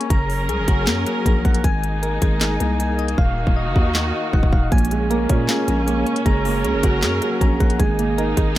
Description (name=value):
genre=hip hop, trap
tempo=156 BPM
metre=4/4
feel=half-time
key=unclear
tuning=A4 = 440 Hz
part: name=warm symphonic string section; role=sustained chords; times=0.0-8.6 s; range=Eb3 to Bb4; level=-26 LUFS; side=right 2 dB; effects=none
part: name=soft electric-piano-like synth keys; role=arpeggios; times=0.0-8.6 s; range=Gb3 to Bb5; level=-24 LUFS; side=left 3 dB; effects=chorus, tremolo, ping-pong delay
part: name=trap drum kit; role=drums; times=0.0-8.5 s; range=handclaps, hi-hat, kick drum, snare drum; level=-19 LUFS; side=equal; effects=none
part: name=growling 808-style bass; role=bass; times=0.1-8.6 s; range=Eb1 to Bb2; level=-23 LUFS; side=equal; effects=none
part: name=felt-muted upright piano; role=accompaniment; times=4.7-8.6 s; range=Bb2 to Ab4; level=-22 LUFS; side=right 5 dB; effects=none
room=little or no reverb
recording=none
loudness=-17 LUFS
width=side -14 dB against mid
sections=0.0-8.6 A section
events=hi-hats muted 3.2-4.7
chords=0.1 Gbadd9; 1.6 Absus2; 3.2 Ebmadd9; 4.7 Bbm7; 6.3 Gbadd9; 7.8 Absus2